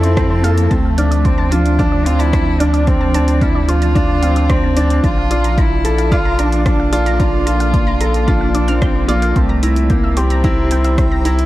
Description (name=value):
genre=piano and strings electronica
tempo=111 BPM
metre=4/4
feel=straight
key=D minor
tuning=A4 = 439 Hz
part: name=rich cello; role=melody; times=0.0-11.3 s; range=A3 to F4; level=-21 LUFS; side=right 1 dB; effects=none
part: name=granular cloud pad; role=sustained chords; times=0.0-11.5 s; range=F3 to Bb5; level=-25 LUFS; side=left 1 dB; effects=built-in reverb
part: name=analog pluck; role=arpeggios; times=0.0-11.3 s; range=C5 to G6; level=-28 LUFS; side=right 2 dB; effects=chorus, sidechain pumping, tape echo
part: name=bright baby grand piano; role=riff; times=0.0-11.5 s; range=C4 to A4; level=-19 LUFS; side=equal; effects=none
part: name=round analog bass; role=bass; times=0.0-11.5 s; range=Bb1 to F2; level=-16 LUFS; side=equal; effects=sidechain pumping
part: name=deep house drum kit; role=drums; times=0.0-11.5 s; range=hi-hat, rim click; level=-28 LUFS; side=equal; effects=overdrive
part: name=electronic kick drum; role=drums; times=0.2-11.1 s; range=none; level=-17 LUFS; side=equal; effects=overdrive
room=light reverb, digital ambience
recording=dark, warm production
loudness=-12 LUFS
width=side -16 dB against mid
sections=0.0-11.5 A section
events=none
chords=0.0 Fmaj7; 0.7 Dm7; 5.0 Bbmaj7; 9.4 C7